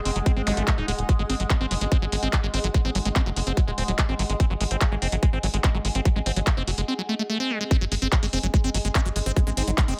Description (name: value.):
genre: psychedelic trance.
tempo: 145 BPM.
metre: 4/4.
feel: straight.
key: unclear.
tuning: A4 = 439 Hz.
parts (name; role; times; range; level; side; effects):
overtone-sweeping drone; sustained chords; 0.0-10.0 s; G#3; -38 LUFS; equal; chorus, built-in reverb, phaser, sidechain pumping.
granular cloud pad; texture; 0.0-10.0 s; G#4 to G#5; -39 LUFS; equal; built-in reverb, sidechain pumping.
liquid acid bass; riff; 0.1-9.9 s; F#3 to D#4; -31 LUFS; equal; phaser, sidechain pumping, digital delay.
tight sequencer bass; bass; 0.1-9.9 s; D#1 to A1; -29 LUFS; equal; tube saturation.
drum and bass drum kit; drums; 0.1-10.0 s; handclaps, hi-hat; -32 LUFS; equal; none.
electronic kick drum; drums; 0.3-9.9 s; none; -23 LUFS; equal; none.
zap; sound effects; 0.5-0.6 s; none; -37 LUFS; equal; none.
vowel-sweep wobble bass; second line; 1.7-4.1, 8.3-9.7 s; G#3 to D#4; -42 LUFS; equal; none.
room: little or no reverb.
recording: none.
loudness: -24 LUFS.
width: mono.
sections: 0.0-7.7 A section; 7.7-10.0 B section.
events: drop 7.7-10.0.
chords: 0.0 G#5.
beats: 0.26 0.68 | 1.09 1.50 1.92 2.33 | 2.74 3.16 3.57 3.98 | 4.40 4.81 5.23 5.64 | 6.05 6.47 6.88 7.29 | 7.71 8.12 8.54 8.95 | 9.36 9.78.